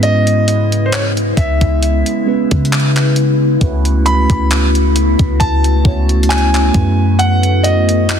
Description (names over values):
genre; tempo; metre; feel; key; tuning
contemporary R&B; 67 BPM; 4/4; swing 54% on 16ths; unclear; A4 = 440 Hz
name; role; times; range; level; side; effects
clear concert grand piano; melody; 0.0-8.2 s; C5 to B5; -19 LUFS; equal; tape echo
mellow tine electric piano; accompaniment; 0.0-8.2 s; G#3 to C#5; -20 LUFS; right 7 dB; phaser
glassy FM pad; sustained chords; 0.0-8.2 s; C#3 to F#4; -19 LUFS; left 3 dB; ensemble chorus, built-in reverb
clean 808-style bass; bass; 0.0-8.2 s; C#2 to C#3; -14 LUFS; left 1 dB; none
gated 80s digital drum machine; drums; 0.0-8.2 s; handclaps, hi-hat, kick drum; -18 LUFS; equal; gated reverb
room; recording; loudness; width
little or no reverb; dense, heavily limited modern master; -11 LUFS; side -8 dB against mid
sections
0.0-8.2 A section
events
none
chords
0.0 C#m9; 3.6 A6/C#; 6.7 B7sus4